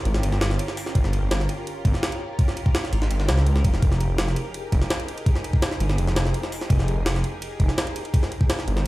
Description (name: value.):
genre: drum and bass, jungle.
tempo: 167 BPM.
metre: 4/4.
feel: straight.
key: F minor.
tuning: A4 = 441 Hz.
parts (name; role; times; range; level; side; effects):
soft string machine; sustained chords; 0.0-8.9 s; Db4 to Bb4; -33 LUFS; equal; phaser, ensemble chorus.
detuned saw bass; bass; 0.1-8.8 s; F1 to Db2; -22 LUFS; equal; tube saturation.
jungle sampler-style drum kit; drums; 0.1-8.9 s; hi-hat, kick drum, ride cymbal, snare drum; -23 LUFS; equal; none.
room: digital ambience.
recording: played on a big sound system in a bare room, large studio reverb.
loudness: -20 LUFS.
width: side -18 dB against mid.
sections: 0.0-8.9 A section.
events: none.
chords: 0.0 Gm7b5; 3.8 Fm11.